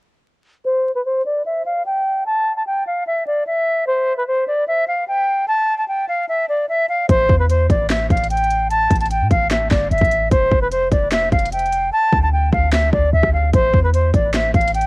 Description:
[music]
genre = hip hop, trap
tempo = 149 BPM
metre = 4/4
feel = half-time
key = A minor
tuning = A4 = 440 Hz
[part]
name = concert flute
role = melody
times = 0.7-14.9 s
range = B4 to A5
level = -17 LUFS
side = equal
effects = low-pass filter, cassette tape
[part]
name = clean 808-style bass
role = bass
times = 7.1-14.9 s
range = F1 to A2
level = -19 LUFS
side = equal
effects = none
[part]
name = trap drum kit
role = drums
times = 7.1-14.9 s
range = handclaps, hi-hat, kick drum, rim click, snare drum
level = -18 LUFS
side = equal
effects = cassette tape
[sound]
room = little or no reverb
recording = home recording on cassette, vinyl crackle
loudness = -15 LUFS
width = side -26 dB against mid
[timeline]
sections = 0.7-7.1 A section; 7.1-14.9 B section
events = filter sweep on flute 0.7-7.1; hi-hats muted 11.9-13.5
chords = 0.7 N.C.; 7.1 A5; 10.3 Dm11/F (rootless); 11.9 Dmadd9; 13.5 A5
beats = | 0.65 1.05 1.46 1.86 | 2.26 2.66 3.07 3.47 | 3.87 4.27 4.68 5.08 | 5.48 5.88 6.29 6.69 | 7.09 7.50 7.90 8.30 | 8.70 9.11 9.51 9.91 | 10.31 10.72 11.12 11.52 | 11.93 12.33 12.73 13.13 | 13.54 13.94 14.34 14.74

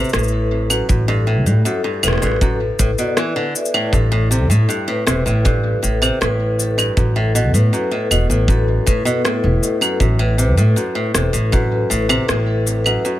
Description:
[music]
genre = folktronica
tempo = 79 BPM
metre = 4/4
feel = straight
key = unclear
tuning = A4 = 440 Hz
[part]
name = vibraphone with medium hard mallets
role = second line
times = 0.0-13.1 s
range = A4 to A5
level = -23 LUFS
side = left 2 dB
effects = tape echo
[part]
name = picked swing-style acoustic guitar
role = arpeggios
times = 0.0-13.2 s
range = F#2 to E3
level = -21 LUFS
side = equal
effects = tape echo
[part]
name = electronic shaker, rim click and claves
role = drums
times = 0.0-13.2 s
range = none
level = -20 LUFS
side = equal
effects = overdrive
[part]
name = upright bass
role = bass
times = 0.1-12.9 s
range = E1 to A2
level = -17 LUFS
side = equal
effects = none
[part]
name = kick drum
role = drums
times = 0.9-11.7 s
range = none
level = -19 LUFS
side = equal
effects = none
[sound]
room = small room ambience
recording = none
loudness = -14 LUFS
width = side -14 dB against mid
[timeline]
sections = 0.0-13.2 A section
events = break 13.0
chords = 0.0 Esus4 (rootless); 0.9 Em11 (rootless); 3.9 Am7; 7.0 B5; 10.0 Esus4 (rootless)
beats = 0.13 | 0.89 1.65 2.41 3.17 | 3.93 4.69 5.45 6.21 | 6.97 7.73 8.49 9.25 | 10.01 10.77 11.53 12.29 | 13.04

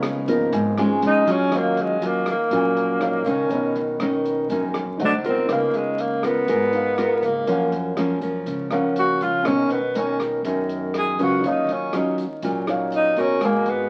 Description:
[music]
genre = bossa nova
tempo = 121 BPM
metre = 4/4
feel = straight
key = Eb minor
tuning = A4 = 440 Hz
[part]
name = nylon-string guitar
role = accompaniment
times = 0.0-13.9 s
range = F#2 to Bb4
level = -25 LUFS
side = equal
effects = none
[part]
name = warm grand piano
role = accompaniment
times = 0.0-13.9 s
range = F3 to Ab5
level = -30 LUFS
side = equal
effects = none
[part]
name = upright bass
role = bass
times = 0.0-13.9 s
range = Ab1 to Gb2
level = -41 LUFS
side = equal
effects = none
[part]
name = open jazz drum kit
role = drums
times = 0.0-13.8 s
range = hi-hat, kick drum, rim click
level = -36 LUFS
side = equal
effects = none
[part]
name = tube shaker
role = percussion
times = 0.0-13.9 s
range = none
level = -60 LUFS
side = equal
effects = none
[part]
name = breathy tenor saxophone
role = melody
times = 1.1-13.9 s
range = Ab3 to Ab4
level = -24 LUFS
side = equal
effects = none
[sound]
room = moderate large studio reverb, RT60 1.1 s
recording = very old 78 rpm record, vinyl crackle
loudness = -22 LUFS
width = mono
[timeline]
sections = 0.0-1.5 A section; 1.5-13.9 B section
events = none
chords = 0.0 Db13; 1.0 Bbm7; 1.5 Ebm9; 3.5 Bmaj9; 5.0 Cdim7; 5.5 Db13; 7.5 Gbmaj7; 9.5 Bmaj9; 11.4 Ebm9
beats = 0.03 0.53 1.02 | 1.52 2.02 2.51 3.01 | 3.50 4.00 4.50 4.99 | 5.49 5.98 6.48 6.97 | 7.47 7.97 8.46 8.96 | 9.45 9.95 10.45 10.94 | 11.44 11.93 12.43 12.92 | 13.42

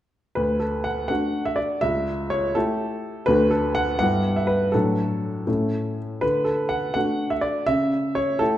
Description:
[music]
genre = classical-period piano sonatina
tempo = 82 BPM (dotted quarters)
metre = 6/8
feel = straight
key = D major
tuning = A4 = 439 Hz
[part]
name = clear grand piano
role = solo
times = 0.4-8.6 s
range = C#2 to F#5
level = -21 LUFS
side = equal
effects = none
[sound]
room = wet recital hall reverb, RT60 1.6 s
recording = dark, warm production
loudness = -21 LUFS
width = side -12 dB against mid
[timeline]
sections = 0.4-8.6 A section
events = none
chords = 0.4 D; 1.8 A7/C#; 3.3 D; 4.0 Em/G; 4.7 D/A; 5.5 A; 6.2 D; 7.7 A7/C#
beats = | 0.37 1.10 | 1.83 2.55 | 3.28 4.01 | 4.74 5.48 | 6.22 6.95 | 7.68 8.41

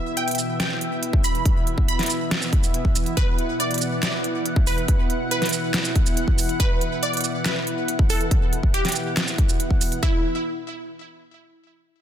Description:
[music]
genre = heavy wobble dubstep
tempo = 140 BPM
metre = 4/4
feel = half-time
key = E minor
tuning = A4 = 440 Hz
[part]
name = wide unison pluck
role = melody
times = 0.0-10.2 s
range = E4 to B5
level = -28 LUFS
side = right 1 dB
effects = phaser, digital delay
[part]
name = lush unison pad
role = sustained chords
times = 0.0-10.2 s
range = B2 to F#5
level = -27 LUFS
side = equal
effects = chorus, sidechain pumping
[part]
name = dubstep drum kit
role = drums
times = 0.2-10.0 s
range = handclaps, hi-hat, shaker, snare drum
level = -26 LUFS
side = right 1 dB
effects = soft clipping on snare
[part]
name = electronic kick drum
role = drums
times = 1.1-10.1 s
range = none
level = -20 LUFS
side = equal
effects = none
[sound]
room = light reverb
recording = dense, heavily limited modern master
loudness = -20 LUFS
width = side -10 dB against mid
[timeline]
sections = 0.0-10.0 A section; 10.0-11.7 B section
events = none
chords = 0.0 E5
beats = 0.17 0.60 1.03 | 1.46 1.88 2.31 2.74 | 3.17 3.60 4.03 4.46 | 4.88 5.31 5.74 6.17 | 6.60 7.03 7.46 7.88 | 8.31 8.74 9.17 9.60 | 10.03

